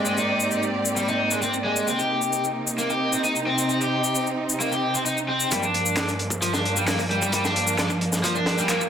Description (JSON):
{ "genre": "breakbeat, breaks", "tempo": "132 BPM", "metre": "4/4", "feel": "straight", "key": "G phrygian", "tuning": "A4 = 441 Hz", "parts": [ { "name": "clear symphonic string section", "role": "sustained chords", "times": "0.0-8.9 s", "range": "G2 to D5", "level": "-26 LUFS", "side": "right 1 dB", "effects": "vintage 12-bit sampler grit, sidechain pumping, low-pass filter" }, { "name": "cranked stack guitar", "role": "riff", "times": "0.0-8.8 s", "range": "F3 to G4", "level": "-24 LUFS", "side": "left 1 dB", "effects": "overdrive, low-pass filter, digital delay" }, { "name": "electronic shaker and handclaps", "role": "drums", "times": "0.1-8.9 s", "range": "none", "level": "-28 LUFS", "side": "left 2 dB", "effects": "none" }, { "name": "crunchy breakbeat drum kit", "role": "drums", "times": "5.5-8.9 s", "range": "hi-hat, kick drum, snare drum", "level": "-27 LUFS", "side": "equal", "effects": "high-pass filter on kick, high-pass filter on hats, high-pass filter on snare, high-pass filter on room" } ], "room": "moderate digital room reverb, RT60 1.3 s", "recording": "faint mains hum", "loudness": "-21 LUFS", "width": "side -8 dB against mid", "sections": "0.0-5.5 A section; 5.5-8.9 B section", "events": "build-up 5.5-8.9; filter sweep on string section 5.5-8.9", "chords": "0.0 Abmaj9#11; 1.9 Cm7; 5.5 Gm7" }